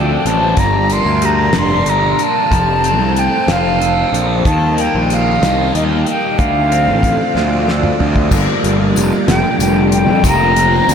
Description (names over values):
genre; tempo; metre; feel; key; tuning
psychedelic rock; 62 BPM (dotted quarters); 6/8; straight; G minor; A4 = 441 Hz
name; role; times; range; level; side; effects
bright reedy concert flute; melody; 0.0-10.9 s; Eb5 to C6; -16 LUFS; left 1 dB; tape echo
string machine, violins; sustained chords; 0.0-10.9 s; F3 to F5; -22 LUFS; right 2 dB; ensemble chorus
overdriven electric guitar; riff; 0.0-10.9 s; F2 to Bb4; -18 LUFS; equal; phaser
fuzz picked electric bass; bass; 0.0-10.9 s; F1 to F2; -17 LUFS; equal; overdrive
damped 70s drum kit; drums; 0.3-10.9 s; crash cymbal, hi-hat, kick drum, snare drum, toms; -21 LUFS; equal; none
tambourine; percussion; 8.3-10.9 s; none; -30 LUFS; left 5 dB; none
room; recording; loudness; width
wet cathedral reverb, RT60 7.5 s; dreamy mix soaked in reverb; -11 LUFS; side -7 dB against mid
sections
0.0-8.3 A section; 8.3-10.9 B section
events
drum fill 7.4-8.3; flute solo 8.3-10.9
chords
0.0 Dm7; 0.6 Gm; 2.5 F; 4.5 Eb; 6.4 Dm7; 8.3 Gm7; 10.3 Fsus4